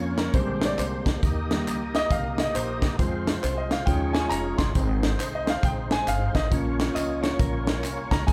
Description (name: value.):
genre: uptempo gospel.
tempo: 136 BPM.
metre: 4/4.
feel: swing 63% on 8ths.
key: unclear.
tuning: A4 = 441 Hz.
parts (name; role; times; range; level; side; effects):
warm concert grand piano; accompaniment; 0.0-8.3 s; D3 to C6; -31 LUFS; equal; none.
overdriven tonewheel organ; sustained chords; 0.0-8.3 s; Ab3 to Eb5; -35 LUFS; equal; slow rotary speaker, chorus vibrato.
upright bass; bass; 0.0-8.3 s; F1 to F2; -33 LUFS; equal; none.
tight funk drum kit; drums; 0.2-8.3 s; hi-hat, kick drum, snare drum; -28 LUFS; equal; none.
tambourine and handclaps; percussion; 0.2-8.3 s; none; -44 LUFS; equal; none.
clean electric guitar; second line; 7.0-8.1 s; Bb4 to Eb5; -36 LUFS; equal; spring reverb.
room: light reverb.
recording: band playing live in one room.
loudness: -25 LUFS.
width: mono.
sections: 0.0-8.3 A section.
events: grand piano solo 0.0-8.3.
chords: 0.3 Bb13; 1.2 Eb; 3.0 Fm; 3.9 Eb9sus4; 4.8 Ab; 6.5 Bbm.